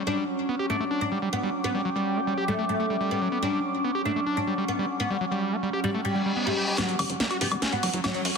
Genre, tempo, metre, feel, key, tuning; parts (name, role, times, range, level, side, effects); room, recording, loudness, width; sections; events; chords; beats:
psychedelic trance; 143 BPM; 4/4; straight; A4 = 439 Hz
evolving wavetable pad; sustained chords; 0.0-8.4 s; F#3 to C#4; -32 LUFS; left 1 dB; chorus, built-in reverb
screaming distorted acid line; riff; 0.0-8.2 s; F#3 to G4; -30 LUFS; right 1 dB; distortion, chorus, auto-pan, dub echo
warbly tape-like pad; texture; 1.2-8.4 s; F#4 to D6; -34 LUFS; right 1 dB; chorus, built-in reverb
oud; melody; 0.1-8.2 s; F#3 to D4; -30 LUFS; equal; phaser, low-pass filter, ping-pong delay
reverse cymbal and riser; sound effects; 6.1-8.4 s; -33 LUFS; left 2 dB
techno drum kit; drums; 6.8-8.3 s; hi-hat, snare drum, woodblock; -27 LUFS; left 1 dB
tight sequencer bass; bass; 7.0-8.3 s; E1 to F#2; -33 LUFS; equal; tube saturation, high-pass filter
moderate lush hall reverb, RT60 2.0 s, digital ambience; dense, heavily limited modern master; -24 LUFS; side -5 dB against mid
0.0-6.8 A section; 6.8-8.4 B section
filter sweep on ambient pad 0.0-6.8; reverse cymbal 6.1-6.8; build-up 6.8-8.4; drum fill 6.8-8.4; filter sweep on oud 6.8-8.4
0.1 G5; 6.8 F#5
| 0.07 0.49 0.91 1.33 | 1.75 2.17 2.59 3.00 | 3.42 3.84 4.26 4.68 | 5.10 5.52 5.94 6.36 | 6.78 7.20 7.62 8.04